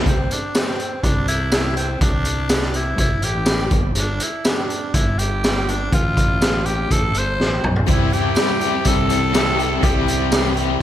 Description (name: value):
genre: classic rock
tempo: 123 BPM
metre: 4/4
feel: straight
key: unclear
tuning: A4 = 440 Hz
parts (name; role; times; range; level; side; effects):
- picked steel-string acoustic guitar; accompaniment; 0.0-0.1, 7.9-10.8 s; C3 to E4; -31 LUFS; right 8 dB; none
- biting overdriven guitar; riff; 0.0-0.1, 7.9-10.8 s; C3 to G4; -23 LUFS; left 12 dB; tremolo, slapback echo
- raw garage guitar; riff; 0.0-0.1, 7.9-10.8 s; C3 to E4; -25 LUFS; right 11 dB; overdrive, slapback echo
- fuzz fingered electric bass; bass; 0.0-10.8 s; G1 to C2; -23 LUFS; equal; overdrive
- growling tenor saxophone; melody; 0.1-10.6 s; C4 to C5; -23 LUFS; equal; slapback echo
- raw garage drum kit; drums; 0.1-10.7 s; hi-hat, kick drum, snare drum, tambourine, toms; -19 LUFS; equal; none
room: light reverb, studio ambience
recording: none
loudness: -16 LUFS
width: side -11 dB against mid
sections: 0.1-10.8 A section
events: drum fill 7.4-7.9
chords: 0.1 C; 3.7 G5; 5.9 F/A; 7.9 C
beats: | 0.06 0.55 1.03 1.52 | 2.01 2.50 2.99 3.48 | 3.97 4.46 4.95 5.44 | 5.92 6.41 6.90 7.39 | 7.88 8.37 8.86 9.34 | 9.83 10.32 10.81